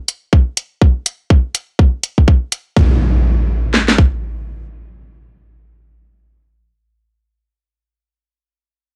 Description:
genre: minimal techno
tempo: 123 BPM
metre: 4/4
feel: swing 60% on 16ths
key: none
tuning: none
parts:
  - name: electronic hi-hat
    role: drums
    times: 0.1-2.6 s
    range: none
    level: -18 LUFS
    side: equal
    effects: none
  - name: garage drum kit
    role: drums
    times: 0.3-4.1 s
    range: kick drum, snare drum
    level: -12 LUFS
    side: equal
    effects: none
  - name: impact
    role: sound effects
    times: 2.8-7.4 s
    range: none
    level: -19 LUFS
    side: equal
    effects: none
room: little or no reverb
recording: dry, gritty hardware recording, transformer saturation, cassette tape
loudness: -15 LUFS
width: mono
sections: 0.0-2.8 A section; 2.8-6.7 B section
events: none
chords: none

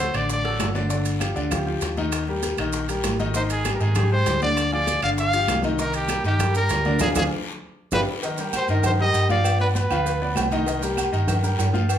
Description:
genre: latin, salsa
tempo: 197 BPM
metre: 4/4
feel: straight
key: C minor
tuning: A4 = 440 Hz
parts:
  - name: bright trumpet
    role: melody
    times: 0.0-0.7, 3.4-10.5 s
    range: G4 to F5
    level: -24 LUFS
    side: equal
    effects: none
  - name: clear baby grand piano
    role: accompaniment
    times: 0.0-12.0 s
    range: D3 to F5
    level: -26 LUFS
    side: left 2 dB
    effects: none
  - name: hollow-body short-scale fingered electric bass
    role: bass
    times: 0.0-12.0 s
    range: G1 to Ab2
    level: -25 LUFS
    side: equal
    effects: none
  - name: bongos and cowbell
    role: percussion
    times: 0.0-12.0 s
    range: none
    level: -36 LUFS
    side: left 4 dB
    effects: none
  - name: claves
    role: percussion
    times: 0.1-12.0 s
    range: none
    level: -38 LUFS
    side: right 5 dB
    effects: none
  - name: congas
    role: percussion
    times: 0.1-12.0 s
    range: none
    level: -31 LUFS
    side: equal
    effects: none
  - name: guiro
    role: percussion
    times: 0.1-12.0 s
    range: none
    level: -37 LUFS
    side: left 5 dB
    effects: none
  - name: maracas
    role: percussion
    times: 0.1-12.0 s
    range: none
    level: -35 LUFS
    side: right 6 dB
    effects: none
  - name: timbales and agogo bells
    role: percussion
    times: 0.1-12.0 s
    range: none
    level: -30 LUFS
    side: right 4 dB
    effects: none
room: moderate large studio reverb, RT60 0.8 s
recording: band playing live in one room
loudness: -20 LUFS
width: side -10 dB against mid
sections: 0.0-8.2 A section; 8.2-12.0 B section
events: band accent 7.0-8.2; drum fill 7.6-8.2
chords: 0.0 D; 0.9 G5; 2.1 Eb; 3.3 Abmaj7; 4.6 Ddim; 5.2 G5; 5.8 Cm7; 7.0 Ddim; 7.6 G7(no3); 8.2 Ebadd9; 9.5 G7; 10.7 Cm7

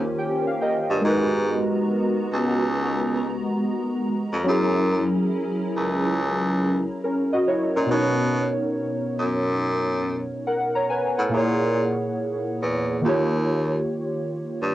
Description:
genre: hip hop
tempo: 70 BPM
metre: 4/4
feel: swing 66% on 16ths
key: G# minor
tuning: A4 = 440 Hz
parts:
  - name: warbly lo-fi synth keys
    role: accompaniment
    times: 0.0-14.7 s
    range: A#2 to A#5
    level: -23 LUFS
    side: equal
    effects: chorus, low-pass filter, cassette tape
  - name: hollow soft pad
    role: sustained chords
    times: 0.0-7.9 s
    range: D#3 to A#5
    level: -27 LUFS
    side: equal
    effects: ensemble chorus, low-pass filter, cassette tape
  - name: clear baritone saxophone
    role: bass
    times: 0.0-14.7 s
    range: C#2 to B2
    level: -24 LUFS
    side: equal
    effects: transformer saturation
room: moderate small room reverb, RT60 0.5 s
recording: home recording on cassette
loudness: -21 LUFS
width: side -14 dB against mid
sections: 0.0-1.0 A section; 1.0-14.7 B section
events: synth keys fill 0.0-1.0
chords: 0.0 D#7; 1.0 G#m9; 4.5 F#7; 7.9 Bmaj9; 11.3 A#m7b5; 13.0 D#7

